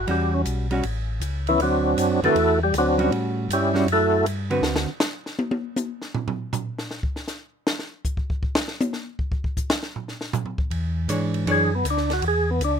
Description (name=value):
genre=soul jazz organ trio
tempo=158 BPM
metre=4/4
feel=swing 66% on 8ths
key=A mixolydian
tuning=A4 = 440 Hz
part: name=percussive tonewheel organ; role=melody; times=0.0-4.3, 11.5-12.8 s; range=E3 to A4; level=-20 LUFS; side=right 1 dB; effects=slow rotary speaker, overdrive, chorus vibrato
part: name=mellow tonewheel organ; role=bass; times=0.0-4.9, 10.7-12.8 s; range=A1 to A2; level=-26 LUFS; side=equal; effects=slow rotary speaker
part: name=archtop guitar, miked and amplified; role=accompaniment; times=0.1-4.9, 11.1-11.7 s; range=D3 to C#5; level=-25 LUFS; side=right 1 dB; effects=none
part: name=compact cocktail drum kit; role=drums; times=0.1-12.7 s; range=hi-hat, kick drum, ride cymbal, snare drum, toms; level=-27 LUFS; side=equal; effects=none
room=little or no reverb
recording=minimal, uncompressed stereo recording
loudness=-21 LUFS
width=side -7 dB against mid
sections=0.0-12.8 A section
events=tonewheel organ solo 0.0-12.8; drum solo 4.6-10.7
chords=0.0 A13; 1.6 D9; 3.1 A13; 4.6 D6; 7.7 N.C.; 10.7 E13